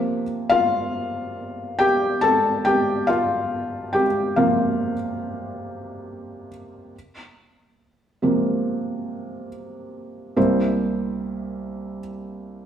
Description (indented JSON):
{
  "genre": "pop",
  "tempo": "70 BPM",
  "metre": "4/4",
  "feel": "straight",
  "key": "unclear",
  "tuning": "A4 = 440 Hz",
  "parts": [
    { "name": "felt-muted upright piano", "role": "solo", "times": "0.0-12.7 s", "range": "C2 to A5", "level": "-21 LUFS", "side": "equal", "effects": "none" }
  ],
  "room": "wet stone room reverb, RT60 1.3 s",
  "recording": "band playing live in one room",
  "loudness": "-20 LUFS",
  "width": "side -9 dB against mid",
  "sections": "0.0-6.9 A section; 6.9-10.4 B section; 10.4-12.7 C section",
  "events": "felt piano solo 0.0-6.9, 6.9-10.4",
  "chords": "0.0 C7sus4; 10.4 C7",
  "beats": "| 0.08 0.94 1.80 2.65 | 3.51 4.37 5.22 6.08 | 6.94 7.80 8.65 9.51 | 10.37 11.22 12.08"
}